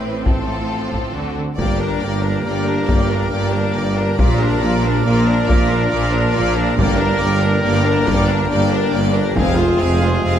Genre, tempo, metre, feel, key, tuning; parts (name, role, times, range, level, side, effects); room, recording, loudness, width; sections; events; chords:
cinematic, epic orchestral film score; 138 BPM; 3/4; straight; G phrygian; A4 = 440 Hz
clear symphonic violin section; melody; 0.0-10.4 s; A4 to F5; -26 LUFS; left 3 dB
warm symphonic violin section; second line; 0.0-10.4 s; D4 to Bb4; -28 LUFS; left 5 dB
rich symphonic viola section; accompaniment; 0.0-10.4 s; Bb3 to F4; -24 LUFS; left 1 dB
warm French horn section; sustained chords; 0.0-10.4 s; F3 to B4; -26 LUFS; left 4 dB
rich symphonic cello section; bass; 0.0-10.4 s; F2 to D3; -22 LUFS; right 2 dB
rich symphonic double bass section; bass; 0.0-10.4 s; F1 to D2; -23 LUFS; right 3 dB
taiko ensemble; drums; 0.3-9.8 s; -21 LUFS; left 1 dB
bright trombone section; sustained chords; 1.6-10.4 s; G2 to Ab3; -29 LUFS; right 2 dB
pipe organ, plenum; sustained chords; 1.6-10.4 s; C4 to F5; -28 LUFS; left 2 dB
bright trumpet; stabs; 1.6-10.4 s; Ab4 to Bb4; -25 LUFS; right 2 dB
warm tuba; bass; 1.6-10.4 s; F1 to Bb1; -23 LUFS; right 3 dB
timpani; percussion; 6.8-7.4 s; G2; -27 LUFS; equal
moderate recital hall reverb, RT60 1.6 s; -15 LUFS; side -9 dB against mid
0.0-1.6 A section; 1.6-10.4 B section
0.3 F/A; 1.1 D7; 1.6 Gm; 4.2 Bb; 6.8 Gm; 9.4 Fm